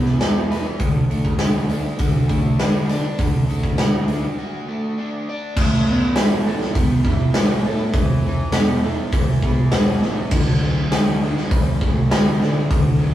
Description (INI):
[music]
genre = rock, shoegaze and dream pop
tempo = 101 BPM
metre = 4/4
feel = straight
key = unclear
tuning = A4 = 441 Hz
[part]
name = overdriven semi-hollow guitar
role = riff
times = 0.0-13.1 s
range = D3 to D5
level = -24 LUFS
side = equal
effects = none
[part]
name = fuzz fingered electric bass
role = bass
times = 0.0-13.1 s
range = E1 to D3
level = -24 LUFS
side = equal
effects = overdrive
[part]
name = big rock drum kit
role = drums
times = 0.1-12.8 s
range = crash cymbal, hi-hat, kick drum, snare drum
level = -18 LUFS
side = equal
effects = none
[sound]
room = light reverb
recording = rough rehearsal-room recording, studio ambience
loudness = -17 LUFS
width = side -12 dB against mid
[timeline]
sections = 0.0-5.6 A section; 5.6-13.1 B section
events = break 4.4-5.6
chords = 0.0 E; 0.8 D; 5.6 Aadd9; 8.0 E; 10.3 D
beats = 0.20 | 0.79 1.39 1.99 2.59 | 3.19 3.79 4.38 4.98 | 5.57 6.17 6.76 7.36 | 7.95 8.55 9.14 9.74 | 10.33 10.93 11.52 12.12 | 12.71